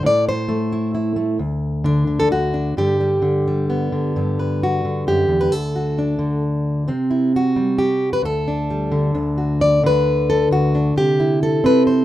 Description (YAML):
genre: folk, solo fingerstyle acoustic guitar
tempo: 133 BPM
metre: 3/4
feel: rubato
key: G major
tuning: A4 = 440 Hz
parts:
  - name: fingerpicked plugged-in steel-string acoustic guitar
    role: solo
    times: 0.0-12.0 s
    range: D2 to D5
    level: -16 LUFS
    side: equal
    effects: none
room: light reverb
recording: rough home demo mix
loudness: -16 LUFS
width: side -14 dB against mid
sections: 0.0-4.2 A section; 4.2-12.0 B section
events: none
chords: 0.1 Am; 1.4 N.C.; 2.8 G; 5.5 D; 6.9 C; 8.2 Dsus4; 9.1 D; 11.0 C